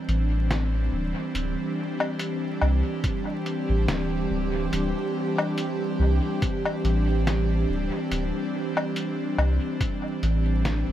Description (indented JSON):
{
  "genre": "ambient dub",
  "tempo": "71 BPM",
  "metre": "4/4",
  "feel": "swing 55% on 16ths",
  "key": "unclear",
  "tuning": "A4 = 439 Hz",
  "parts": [
    { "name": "airy breathy pad", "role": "sustained chords", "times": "0.0-10.9 s", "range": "E3 to G4", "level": "-27 LUFS", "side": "right 1 dB", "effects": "chorus" },
    { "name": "soft dub sub bass", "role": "bass", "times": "0.1-10.9 s", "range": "D1 to C2", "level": "-24 LUFS", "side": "equal", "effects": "none" },
    { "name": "lo-fi sampler-style drum kit", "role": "drums", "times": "0.1-10.8 s", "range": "hi-hat, snare drum, woodblock", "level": "-30 LUFS", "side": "left 1 dB", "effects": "dub echo" },
    { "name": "electronic kick drum", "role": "drums", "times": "3.0-10.0 s", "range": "none", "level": "-27 LUFS", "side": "equal", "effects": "none" }
  ],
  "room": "light reverb, digital ambience",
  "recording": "vinyl crackle",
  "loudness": "-23 LUFS",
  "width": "side -12 dB against mid",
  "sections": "0.0-10.9 A section",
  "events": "none",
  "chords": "0.0 Cadd9/D"
}